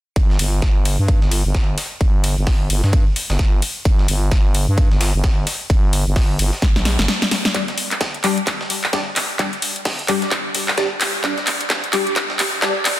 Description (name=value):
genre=bass house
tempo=130 BPM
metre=4/4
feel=swing 60% on 16ths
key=G minor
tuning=A4 = 439 Hz
part: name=growling FM bass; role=bass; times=0.2-7.1 s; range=G1 to G2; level=-19 LUFS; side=equal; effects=tube saturation, sidechain pumping
part: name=breakbeat sampler-style drum kit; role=drums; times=0.2-13.0 s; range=hi-hat, ride cymbal, snare drum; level=-28 LUFS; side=right 2 dB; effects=high-pass filter on cymbals, studio reverb, high-pass filter on snare, high-pass filter on hats
part: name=electronic kick drum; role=drums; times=0.2-12.7 s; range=none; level=-17 LUFS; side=equal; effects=high-pass filter on kick, studio reverb
part: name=big-room dance drum kit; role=drums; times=0.4-13.0 s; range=handclaps, hi-hat, snare drum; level=-20 LUFS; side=left 1 dB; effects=studio reverb
part: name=band-passed chord stab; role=stabs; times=7.5-12.7 s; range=G3 to D5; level=-23 LUFS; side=left 2 dB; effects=phaser, lush chorus, sidechain pumping, tape echo
room=light reverb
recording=dense, heavily limited modern master, high-pass filter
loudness=-16 LUFS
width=side -14 dB against mid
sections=0.2-7.5 A section; 7.5-13.0 B section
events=drum fill 6.6-7.5, 7.5-13.0; build-up 7.5-13.0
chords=0.2 N.C.; 7.5 G5